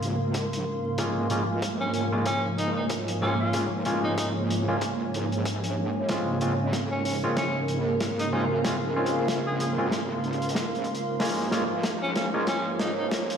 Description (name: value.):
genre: glitch hop.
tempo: 94 BPM.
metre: 4/4.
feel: swing 57% on 16ths.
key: unclear.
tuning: A4 = 436 Hz.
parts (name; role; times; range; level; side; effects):
warm analog pad; sustained chords; 0.0-13.4 s; Ab2 to Bb3; -30 LUFS; right 1 dB; chorus, tremolo, sidechain pumping.
wobble bass; bass; 0.0-13.4 s; Gb1 to Gb2; -35 LUFS; equal; chorus, overdrive, high-pass filter.
warm soul drum kit; drums; 0.0-13.4 s; hi-hat, snare drum; -32 LUFS; equal; none.
granular cloud pad; texture; 0.0-13.4 s; Bb4 to C6; -32 LUFS; right 1 dB; built-in reverb, sidechain pumping.
electronic kick drum; drums; 0.3-13.3 s; none; -34 LUFS; equal; overdrive, high-pass filter on kick.
overdriven clav; stabs; 1.0-12.5 s; Ab3 to F4; -31 LUFS; equal; sidechain pumping, low-pass filter, dub echo.
breathy tenor saxophone; melody; 1.8-13.1 s; Db4 to Ab4; -32 LUFS; equal; vintage 12-bit sampler grit, dub echo.
room: moderate lush hall reverb, RT60 3.1 s.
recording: played on a big sound system in a bare room, large studio reverb, vinyl crackle, high-pass filter.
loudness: -24 LUFS.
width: side -7 dB against mid.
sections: 0.0-13.4 A section.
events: build-up 0.0-13.4; filter sweep on analog synth pad 0.0-13.4; drum fill 6.1-13.4.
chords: 0.0 Bbm7; 1.0 Gbmaj9; 6.1 Bbm7; 11.2 Gbmaj9.